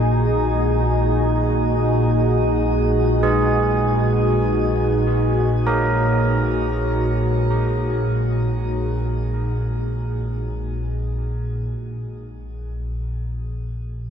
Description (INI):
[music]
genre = dark ambient drone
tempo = free time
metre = none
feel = none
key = unclear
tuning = A4 = 438 Hz
[part]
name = deep dark ambient pad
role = sustained chords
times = 0.0-11.8 s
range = Bb2 to Ab4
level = -22 LUFS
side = equal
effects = chorus, built-in reverb, shimmer reverb
[part]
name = deep rumbling drone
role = drone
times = 0.0-14.1 s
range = Bb1 to Bb2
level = -21 LUFS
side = equal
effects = built-in reverb, phaser
[part]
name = bronze singing bowl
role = texture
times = 0.0-11.8 s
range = none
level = barely audible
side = none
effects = none
[part]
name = carillon bells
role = arpeggios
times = 3.2-13.0 s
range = Ab4 to Bb4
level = -25 LUFS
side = right 3 dB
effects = tape echo, shimmer reverb
[sound]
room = wet huge ambient reverb, RT60 8.3 s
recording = none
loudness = -18 LUFS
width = side -8 dB against mid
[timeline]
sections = 0.0-11.8 A section; 11.8-14.1 B section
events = none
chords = 0.0 Ebmadd11/Bb; 11.8 Bbm